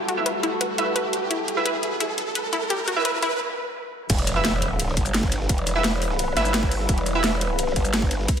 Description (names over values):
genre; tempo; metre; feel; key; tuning
dark technical drum and bass; 172 BPM; 4/4; straight; E minor; A4 = 439 Hz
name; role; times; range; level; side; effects
deep dark ambient pad; sustained chords; 0.0-8.4 s; G3 to B4; -30 LUFS; left 2 dB; chorus, built-in reverb, sidechain pumping
riser and impact; sound effects; 0.0-5.5 s; none; -29 LUFS; right 2 dB; none
wide unison pluck; arpeggios; 0.1-3.3 s; E4 to E5; -28 LUFS; left 2 dB; sidechain pumping, dub echo
drum and bass drum kit; drums; 0.1-8.4 s; crash cymbal, hi-hat, shaker, snare drum; -26 LUFS; equal; overdrive
orchestra-hit-like synth stab; stabs; 0.2-7.3 s; E4 to E5; -28 LUFS; right 2 dB; built-in reverb, cassette tape, dub echo
growl bass; bass; 4.1-8.3 s; E1 to G1; -25 LUFS; equal; chorus, overdrive
breakbeat sampler-style drum kit; drums; 4.1-8.4 s; hi-hat, ride cymbal, snare drum; -34 LUFS; right 1 dB; high-pass filter on cymbals, high-pass filter on snare, high-pass filter on hats
electronic kick drum; drums; 4.1-8.4 s; none; -23 LUFS; equal; overdrive
room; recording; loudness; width
moderate lush hall reverb, RT60 1.9 s; high-pass filter; -21 LUFS; side -8 dB against mid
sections
0.0-4.1 A section; 4.1-8.4 B section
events
build-up 0.0-4.1; riser 0.0-3.4; break 3.4-4.1; drop 4.1-8.4; impact 4.1-5.5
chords
0.0 Em